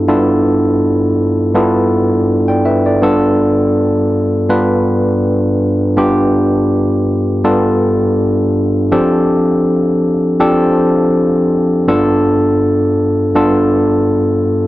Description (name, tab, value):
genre	soul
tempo	81 BPM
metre	4/4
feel	swing 54% on 16ths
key	unclear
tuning	A4 = 440 Hz
part	barky tine electric piano	solo	0.0-14.7 s	G2 to G5	-11 LUFS	equal	none
room	light reverb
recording	dark, warm production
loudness	-11 LUFS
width	side -16 dB against mid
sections	0.0-3.0 A section; 3.0-14.7 B section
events	none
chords	0.0 G13; 3.0 G7; 8.9 F69; 11.9 G9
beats	| 0.08 0.81 1.55 2.29 | 3.03 3.76 4.50 5.24 | 5.97 6.71 7.45 8.19 | 8.92 9.66 10.40 11.14 | 11.88 12.62 13.35 14.09